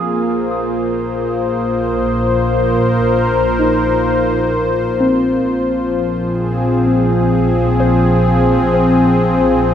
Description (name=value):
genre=ambient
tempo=64 BPM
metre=3/4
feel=straight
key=unclear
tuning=A4 = 439 Hz
part: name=warm analog pad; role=sustained chords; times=0.0-9.7 s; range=F3 to C5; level=-14 LUFS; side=left 1 dB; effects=chorus
part: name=muted felt-like synth keys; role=arpeggios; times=0.0-9.7 s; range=C4 to Eb6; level=-22 LUFS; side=equal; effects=chorus, tape echo
part: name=warm studio double bass section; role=bass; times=0.0-9.7 s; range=Bb1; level=-20 LUFS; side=right 2 dB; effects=none
room=wet concert hall reverb, RT60 2.4 s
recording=none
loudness=-13 LUFS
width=side -9 dB against mid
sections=0.0-9.7 A section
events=fade-out on synth keys 0.0-9.7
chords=0.0 Fm/Bb